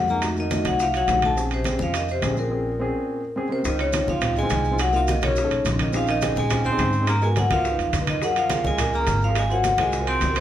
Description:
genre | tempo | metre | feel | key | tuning
Afro-Cuban jazz | 210 BPM | 4/4 | straight | Bb minor, Db major from 3.7 s | A4 = 437 Hz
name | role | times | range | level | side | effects
vibraphone with medium hard mallets | melody | 0.0-10.4 s | Bb4 to C6 | -24 LUFS | left 1 dB | plate reverb
clear tenor saxophone | second line | 0.0-10.4 s | Bb2 to C4 | -30 LUFS | left 2 dB | none
dark baby grand piano | accompaniment | 0.0-10.4 s | Ab3 to C5 | -28 LUFS | equal | none
upright bass | bass | 0.0-10.4 s | Ab1 to Bb2 | -26 LUFS | equal | none
bongos | percussion | 0.1-10.4 s | none | -35 LUFS | left 4 dB | none
congas | percussion | 0.1-10.4 s | none | -31 LUFS | left 1 dB | none
maracas | percussion | 0.1-10.4 s | none | -39 LUFS | right 6 dB | none
timbales | percussion | 0.2-10.4 s | none | -32 LUFS | right 6 dB | none
room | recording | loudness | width
wet large studio reverb, RT60 0.8 s | heard from further back in the room | -20 LUFS | side -11 dB against mid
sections
0.0-3.7 A section; 3.7-10.4 B section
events
break 2.5-3.7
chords
0.2 F7b9; 1.4 Bbm9; 3.7 Dbmaj9; 4.8 Cm7b5; 5.4 Cb9; 5.9 Bbm11; 7.1 Abm9; 7.6 Db9; 8.2 Gbmaj7; 9.4 Ab13

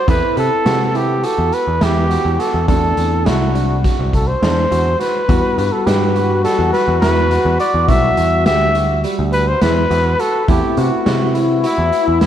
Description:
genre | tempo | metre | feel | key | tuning
progressive instrumental, band music in an uneven meter | 208 BPM (eighths) | 9/8 | straight | E minor | A4 = 440 Hz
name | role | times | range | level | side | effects
breathy trumpet | melody | 0.0-12.3 s | E4 to E5 | -17 LUFS | equal | slapback echo, tape echo
hollow-body jazz guitar | accompaniment | 0.0-12.3 s | G3 to A4 | -26 LUFS | left 1 dB | double-tracked left and right, slapback echo
barky tine electric piano | arpeggios | 0.1-12.3 s | G3 to G4 | -23 LUFS | right 4 dB | slapback echo, tape echo
picked electric bass | bass | 0.1-12.3 s | B1 to C3 | -18 LUFS | equal | none
raw garage drum kit | drums | 0.1-12.3 s | hi-hat, kick drum, snare drum | -20 LUFS | equal | none
breathy trombone | second line | 5.3-12.3 s | E4 to F#4 | -21 LUFS | left 5 dB | none
room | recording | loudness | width
moderate lush hall reverb, RT60 2.0 s, small room ambience | big arena sound | -13 LUFS | side -10 dB against mid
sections
0.0-12.3 A section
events
none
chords
0.1 Amadd9/E; 2.7 D7; 5.3 Emadd9; 10.5 Amadd9/E

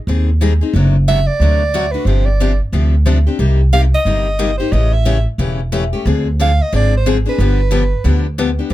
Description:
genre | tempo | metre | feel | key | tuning
acoustic string swing (jazz manouche) | 181 BPM | 4/4 | swing 62% on 8ths | unclear | A4 = 442 Hz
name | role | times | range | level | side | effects
picked steel-string acoustic guitar | accompaniment | 0.1-8.7 s | C3 to Ab4 | -19 LUFS | left 6 dB | none
upright bass | bass | 0.1-8.7 s | E1 to Eb2 | -14 LUFS | equal | none
breathy soprano saxophone | melody | 1.1-8.4 s | B4 to F5 | -19 LUFS | right 3 dB | none
room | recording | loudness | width
little or no reverb | none | -12 LUFS | side -15 dB against mid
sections
0.0-8.7 A section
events
none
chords
0.0 Abmaj7; 0.7 D7/F#; 2.1 G7sus4; 3.4 Cm7; 4.7 A7; 6.0 Dm7b5; 7.4 G7

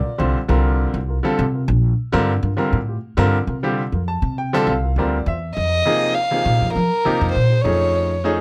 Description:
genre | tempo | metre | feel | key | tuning
electric jazz fusion | 101 BPM | 4/4 | straight | unclear | A4 = 441 Hz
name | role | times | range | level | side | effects
bright baby grand piano | accompaniment | 0.0-8.4 s | C3 to A5 | -23 LUFS | equal | none
upright bass | bass | 0.2-8.4 s | Bb1 to F3 | -22 LUFS | equal | none
dark violin | melody | 5.6-8.2 s | Bb4 to F5 | -22 LUFS | equal | slapback echo
room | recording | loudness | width
light reverb | dry, close 1970s-style studio recording | -19 LUFS | mono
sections
0.0-5.6 A section; 5.6-8.4 B section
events
grand piano fill 0.0-0.8, 3.8-5.6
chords
0.5 C13sus4; 5.6 Fm7; 7.6 F7alt

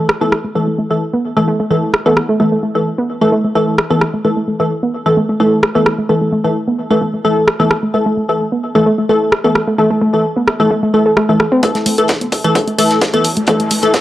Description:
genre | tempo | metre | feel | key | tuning
driving peak-time techno | 130 BPM | 4/4 | straight | unclear | A4 = 435 Hz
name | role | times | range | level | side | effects
wavetable chord stab | stabs | 0.0-14.0 s | E3 to A4 | -14 LUFS | left 1 dB | sidechain pumping, tape echo
punchy analog drum machine | drums | 0.1-14.0 s | hi-hat, rim click | -15 LUFS | equal | sidechain pumping on hats, high-pass filter on hats, studio reverb, high-pass filter on snare
warbly dusty pluck | riff | 0.2-13.8 s | A3 to A4 | -17 LUFS | right 1 dB | chorus, cassette tape, sidechain pumping, tape echo
damped 70s drum kit | drums | 11.6-14.0 s | hi-hat, snare drum | -24 LUFS | left 1 dB | high-pass filter on hats, studio reverb, high-pass filter on snare, high-pass filter on room
electronic kick drum | drums | 11.6-14.0 s | none | -16 LUFS | equal | high-pass filter on kick, studio reverb, high-pass filter on room
riser | sound effects | 12.2-14.0 s | none | -30 LUFS | right 1 dB | none
room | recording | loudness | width
light reverb | dry, gritty hardware recording | -12 LUFS | side -14 dB against mid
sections
0.0-11.6 A section; 11.6-14.0 B section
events
filter sweep on synth arpeggio sound 0.0-11.6, 11.6-14.0; build-up 11.6-14.0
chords
0.0 A5

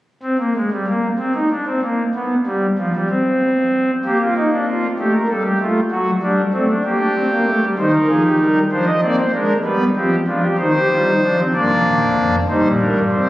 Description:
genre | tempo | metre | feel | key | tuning
classical, baroque-style 4-part fugue for pipe organ | 64 BPM (dotted quarters) | 6/8 | straight | unclear | A4 = 439 Hz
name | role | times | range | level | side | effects
pipe organ, foundations | solo | 0.2-13.3 s | D1 to Eb5 | -15 LUFS | equal | none
room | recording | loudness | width
wet cathedral reverb, RT60 4.7 s | recorded on a phone in the room, club reverb | -15 LUFS | side -16 dB against mid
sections
0.2-13.3 A section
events
none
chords
0.2 N.C.; 4.0 Gm/Bb; 5.0 Gm9; 5.9 D7/F#; 6.9 Gm/Bb; 7.8 Cm/Eb; 8.7 Dm7b5/F; 9.7 G7; 10.6 Cm/Eb; 11.5 Gm; 12.5 Am7b5/G

